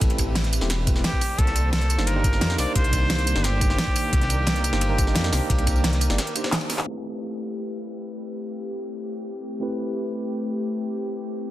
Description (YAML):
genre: liquid drum and bass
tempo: 175 BPM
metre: 4/4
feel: straight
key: A minor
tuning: A4 = 440 Hz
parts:
  - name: tine electric piano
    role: accompaniment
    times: 0.0-11.5 s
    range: A3 to Eb5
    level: -31 LUFS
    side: right 1 dB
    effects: fast stereo tremolo, tape echo
  - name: warm analog pad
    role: sustained chords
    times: 0.0-11.5 s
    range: Eb3 to B5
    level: -32 LUFS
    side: left 1 dB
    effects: chorus, sidechain pumping
  - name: dark detuned saw bass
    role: bass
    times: 0.0-6.2 s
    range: E1 to F2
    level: -24 LUFS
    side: equal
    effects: none
  - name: crunchy breakbeat drum kit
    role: drums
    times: 0.0-6.9 s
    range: ride cymbal, snare drum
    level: -35 LUFS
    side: equal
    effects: high-pass filter on cymbals, high-pass filter on snare, high-pass filter on room
  - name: electronic kick drum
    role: drums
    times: 0.0-5.7 s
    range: none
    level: -23 LUFS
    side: equal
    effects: none
  - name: pop drum kit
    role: drums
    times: 0.0-6.9 s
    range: crash cymbal, handclaps, hi-hat, snare drum, tambourine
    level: -26 LUFS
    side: equal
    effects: low-pass filter on hats, low-pass filter on cymbals, low-pass filter on perc, low-pass filter on snare
  - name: trumpet with straight mute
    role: melody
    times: 1.0-6.5 s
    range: G4 to D5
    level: -29 LUFS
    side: equal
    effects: tape echo
room: light reverb, studio ambience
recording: dense, heavily limited modern master, low-pass filter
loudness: -21 LUFS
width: side -14 dB against mid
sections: 0.0-6.9 A section; 6.9-11.5 B section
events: drop 0.0-6.9; break 6.2-6.9; drum fill 6.5-6.9; band accent 6.8; filter sweep 6.9-11.5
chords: 0.0 Am9; 1.2 Cm9; 6.9 Am9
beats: | 0.01 0.36 0.70 1.04 | 1.38 1.73 2.07 2.41 | 2.76 3.10 3.44 3.78 | 4.13 4.47 4.81 5.16 | 5.50 5.84 6.18 6.53 | 6.87 7.21 7.56 7.90 | 8.24 8.58 8.93 9.27 | 9.61 9.96 10.30 10.64 | 10.98 11.33